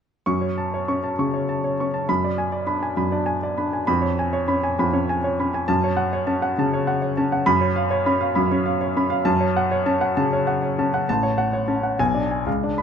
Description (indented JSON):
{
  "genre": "classical, virtuoso piano study",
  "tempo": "133 BPM",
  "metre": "4/4",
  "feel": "rubato",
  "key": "F# minor",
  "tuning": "A4 = 440 Hz",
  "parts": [
    { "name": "warm baby grand piano", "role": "solo", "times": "0.3-12.8 s", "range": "A1 to C#6", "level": "-19 LUFS", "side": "equal", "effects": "none" }
  ],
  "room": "moderate recital hall reverb, RT60 1.6 s",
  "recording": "close, detailed microphones",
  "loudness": "-19 LUFS",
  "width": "side -7 dB against mid",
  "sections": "0.3-12.8 A section",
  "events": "none",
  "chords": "0.3 F#m; 2.1 G#m7b5/F#; 3.9 C#7/E#; 5.7 F#m; 7.5 C#7/F#; 9.3 F#m; 11.1 F#m/A; 12.0 G#dim/B"
}